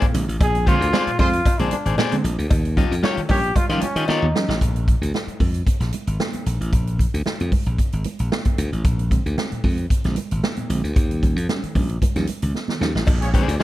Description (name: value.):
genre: funk.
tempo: 114 BPM.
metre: 4/4.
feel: straight.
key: Bb mixolydian.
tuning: A4 = 440 Hz.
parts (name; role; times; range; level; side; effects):
electric guitar at the edge of break-up; accompaniment; 0.0-4.3, 13.3-13.6 s; F4 to Eb5; -26 LUFS; left 7 dB; none.
reed electric piano; stabs; 0.0-4.5, 8.8-13.6 s; Bb2 to Db4; -28 LUFS; right 2 dB; fast tremolo.
swinging big-band drum kit; drums; 0.0-13.6 s; crash cymbal, hi-hat, kick drum, snare drum; -21 LUFS; equal; none.
congas; percussion; 0.0-12.8 s; none; -31 LUFS; right 5 dB; none.
glassy slap bass; bass; 0.1-13.6 s; Ab1 to Eb3; -22 LUFS; equal; none.
brilliant trombone; melody; 0.4-4.6 s; Db4 to Ab4; -24 LUFS; equal; analog delay.
cowbell; percussion; 0.4-4.2, 13.1-13.6 s; none; -33 LUFS; left 4 dB; none.
warm horn section; second line; 0.9-3.4, 13.2-13.6 s; F4 to D5; -30 LUFS; right 2 dB; none.
room: small room ambience.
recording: none.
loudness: -18 LUFS.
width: side -15 dB against mid.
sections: 0.0-4.6 A section; 4.6-13.1 B section.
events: trombone solo 0.0-4.6; drum fill 4.1-4.6, 12.5-13.1.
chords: 0.0 Bb9; 2.5 Eb9; 4.6 Bb9; 11.0 Eb9; 13.1 Bb9.